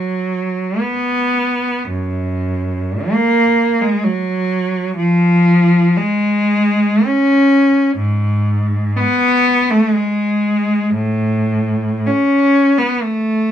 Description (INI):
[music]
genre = classical, free, expressive piece for unaccompanied cello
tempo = 60 BPM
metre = 3/4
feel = uneven beats, rubato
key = unclear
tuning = A4 = 440 Hz
[part]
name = rich cello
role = solo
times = 0.0-13.5 s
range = F#2 to C#4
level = -13 LUFS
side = equal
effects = none
[sound]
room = light reverb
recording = minimal, uncompressed stereo recording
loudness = -13 LUFS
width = side -10 dB against mid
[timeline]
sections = 0.0-13.5 A section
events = none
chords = none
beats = 0.80 | 1.91 3.09 4.04 | 4.96 5.96 7.04 | 7.96 8.97 9.95 | 10.95 12.07 13.05